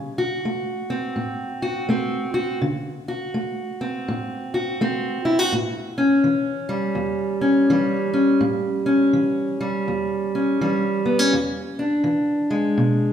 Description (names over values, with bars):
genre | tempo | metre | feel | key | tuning
blues | 83 BPM | 4/4 | swing 62% on 8ths | A mixolydian | A4 = 440 Hz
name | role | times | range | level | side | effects
fingerpicked steel-string acoustic guitar | solo | 0.0-13.1 s | E2 to F#4 | -20 LUFS | equal | none
room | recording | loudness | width
wet recital hall reverb, RT60 1.8 s | recorded in a church or concert hall | -20 LUFS | side -9 dB against mid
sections
0.0-13.1 A section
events
none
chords
0.0 D7; 5.5 A7; 11.3 E7